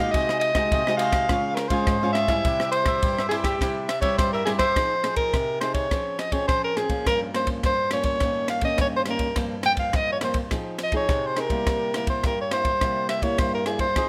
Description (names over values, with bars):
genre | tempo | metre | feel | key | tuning
samba and choro | 104 BPM | 4/4 | straight | unclear | A4 = 443 Hz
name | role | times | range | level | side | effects
mellow soprano saxophone | melody | 0.0-14.1 s | G4 to G5 | -26 LUFS | equal | plate reverb
cavaquinho | accompaniment | 0.0-4.8, 14.0-14.1 s | E4 to F5 | -34 LUFS | equal | none
nylon-string guitar | accompaniment | 0.0-14.1 s | G2 to Ab4 | -31 LUFS | equal | none
compact cocktail drum kit | drums | 0.1-14.1 s | kick drum, ride cymbal, rim click | -30 LUFS | equal | none
room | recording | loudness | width
moderate large studio reverb, RT60 0.8 s | none | -24 LUFS | mono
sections
0.0-4.8 A section; 4.8-14.1 B section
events
none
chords
0.2 Ab7/C; 1.3 Db; 2.5 C; 4.8 Fm7; 5.9 Dbmaj7/F; 7.1 Gm7b5; 8.2 Eb7/G; 9.4 C7sus4/G; 10.5 Fm7; 11.7 C7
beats
| 0.15 0.73 1.30 1.88 | 2.45 3.03 3.61 4.18 | 4.76 5.34 5.91 6.49 | 7.07 7.64 8.22 8.79 | 9.37 9.94 10.52 11.09 | 11.67 12.24 12.81 13.39 | 13.96